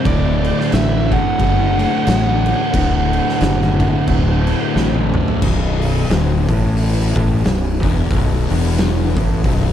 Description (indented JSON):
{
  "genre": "stoner and doom metal",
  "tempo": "90 BPM",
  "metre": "4/4",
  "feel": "swing 58% on 8ths",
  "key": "B minor",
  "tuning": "A4 = 440 Hz",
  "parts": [
    { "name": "fuzz lead guitar", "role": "melody", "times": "0.0-4.7 s", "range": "D5 to F#5", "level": "-22 LUFS", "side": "right 2 dB", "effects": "distortion, tape echo" },
    { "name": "soft string machine", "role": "sustained chords", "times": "0.0-9.7 s", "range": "D3 to B4", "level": "-32 LUFS", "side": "equal", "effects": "none" },
    { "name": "raw garage guitar", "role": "riff", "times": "0.0-9.7 s", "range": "B1 to D3", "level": "-25 LUFS", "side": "right 1 dB", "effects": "overdrive" },
    { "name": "thick fuzz guitar", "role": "riff", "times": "0.0-9.7 s", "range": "B1 to D3", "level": "-22 LUFS", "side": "left 9 dB", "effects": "distortion" },
    { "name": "thick fuzz guitar", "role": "riff", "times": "0.0-5.4 s", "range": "D2 to D3", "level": "-23 LUFS", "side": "right 7 dB", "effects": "distortion" },
    { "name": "fuzz fingered electric bass", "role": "bass", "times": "0.1-9.7 s", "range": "B0 to A1", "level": "-18 LUFS", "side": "equal", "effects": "overdrive" },
    { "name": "oversized low-tuned drum kit", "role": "drums", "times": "0.1-9.6 s", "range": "crash cymbal, hi-hat, kick drum, snare drum, toms", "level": "-20 LUFS", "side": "equal", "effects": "none" }
  ],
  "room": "small room ambience",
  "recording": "none",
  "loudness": "-14 LUFS",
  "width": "side -10 dB against mid",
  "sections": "0.0-5.4 A section; 5.4-9.7 B section",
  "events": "drum fill 4.8-5.4",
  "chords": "0.1 D; 5.4 Bm",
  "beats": "| 0.06 0.73 1.40 2.07 | 2.74 3.41 4.08 4.75 | 5.42 6.09 6.76 7.43 | 8.11 8.78 9.45"
}